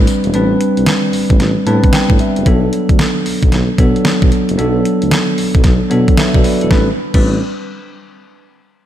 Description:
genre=R&B, new jack swing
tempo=113 BPM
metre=4/4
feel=swing 64% on 16ths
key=A dorian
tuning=A4 = 440 Hz
part: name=bell-like tine electric piano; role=accompaniment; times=0.0-7.4 s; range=F#3 to A5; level=-14 LUFS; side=equal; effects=slapback echo
part: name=mellow tuba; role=bass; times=0.0-7.4 s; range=E1 to B2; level=-17 LUFS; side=equal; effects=none
part: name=clean 12-bit digital drum machine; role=drums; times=0.1-7.2 s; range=crash cymbal, hi-hat, kick drum, snare drum, tambourine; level=-14 LUFS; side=equal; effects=none
room=moderate concert hall reverb, RT60 2.1 s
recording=big arena sound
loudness=-10 LUFS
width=side -11 dB against mid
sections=0.0-6.7 A section; 6.7-8.8 B section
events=tine electric piano fill 1.4-2.5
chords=0.0 Am11; 2.5 Bm7; 6.7 Am11

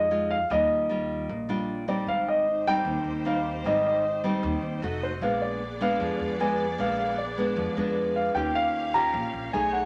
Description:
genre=bossa nova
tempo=153 BPM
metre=4/4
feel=straight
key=unclear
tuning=A4 = 437 Hz
part: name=warm concert grand piano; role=melody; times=0.0-9.9 s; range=C5 to Bb5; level=-29 LUFS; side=equal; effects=none
part: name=nylon-string guitar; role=accompaniment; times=0.0-9.9 s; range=Ab2 to G#4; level=-31 LUFS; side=equal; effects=none
part: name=upright bass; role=bass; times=0.0-9.9 s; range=F1 to F2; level=-39 LUFS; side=equal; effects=none
part: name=clear studio string section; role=sustained chords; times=2.1-9.9 s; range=A3 to F5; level=-39 LUFS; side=equal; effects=none
room=wet club reverb, RT60 0.6 s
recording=none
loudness=-27 LUFS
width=mono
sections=0.0-2.1 A section; 2.1-9.9 B section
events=none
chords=0.0 Bb7sus4 (rootless); 0.5 Ebmaj9; 2.1 Abmaj7; 4.8 F7b9; 5.2 Bb7b9; 8.4 Eb9

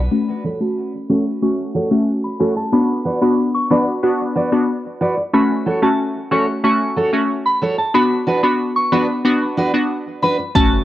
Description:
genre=dancehall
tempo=92 BPM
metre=4/4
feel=straight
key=F# minor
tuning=A4 = 442 Hz
part: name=warm sub bass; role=bass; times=0.0-0.1, 10.6-10.8 s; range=F#1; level=-20 LUFS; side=equal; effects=none
part: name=soft synth bell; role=melody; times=0.1-10.7 s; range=A5 to C#6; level=-21 LUFS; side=equal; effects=chorus, phaser, low-pass filter, cassette tape, analog delay
part: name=glassy wavetable pluck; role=accompaniment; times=0.1-10.7 s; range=A3 to F#4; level=-17 LUFS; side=left 1 dB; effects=chorus, sidechain pumping, low-pass filter, cassette tape
part: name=picked steel-string acoustic guitar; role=arpeggios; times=0.4-10.4 s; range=D4 to D5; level=-21 LUFS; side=right 2 dB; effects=low-pass filter, cassette tape, analog delay
part: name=afro-pop drum kit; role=drums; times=10.6-10.7 s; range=hi-hat, kick drum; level=-16 LUFS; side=equal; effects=cassette tape
room=light reverb, digital ambience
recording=home recording on cassette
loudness=-15 LUFS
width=side -14 dB against mid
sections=0.1-10.6 A section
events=filter sweep 0.1-10.6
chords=0.1 F#m; 2.7 Bm; 5.3 F#m; 7.9 Bm

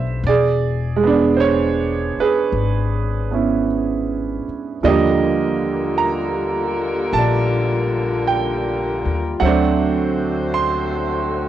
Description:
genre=jazz ballad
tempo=52 BPM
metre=4/4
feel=swing 68% on 8ths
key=unclear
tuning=A4 = 440 Hz
part: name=clear concert grand piano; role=accompaniment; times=0.0-11.5 s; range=B2 to C6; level=-18 LUFS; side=right 5 dB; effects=cassette tape
part: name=upright bass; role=bass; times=0.0-11.5 s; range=E1 to Eb2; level=-23 LUFS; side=left 2 dB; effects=none
part: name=mellow saxophone section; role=sustained chords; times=4.8-11.5 s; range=D3 to C5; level=-23 LUFS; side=left 3 dB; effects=cassette tape
room=moderate studio reverb, RT60 0.5 s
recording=home recording on cassette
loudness=-16 LUFS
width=side -11 dB against mid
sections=0.0-11.5 A section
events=none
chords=0.2 E7; 4.8 Ebmaj9; 9.4 D7

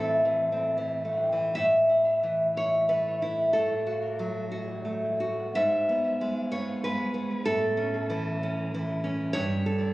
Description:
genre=romantic piece for solo classical guitar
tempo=72-100 BPM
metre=3/4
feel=rubato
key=A major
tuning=A4 = 440 Hz
part: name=nylon-string guitar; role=solo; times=0.0-9.9 s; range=G2 to E5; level=-24 LUFS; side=equal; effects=tape echo
room=moderate concert hall reverb, RT60 2.0 s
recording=recorded on a phone in the room, studio reverb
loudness=-25 LUFS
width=side -18 dB against mid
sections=0.0-1.6 A section; 1.6-9.9 B section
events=none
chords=0.0 Am; 1.6 A5; 3.5 F#m/A; 5.5 E/G#; 7.5 A; 9.3 A7/G

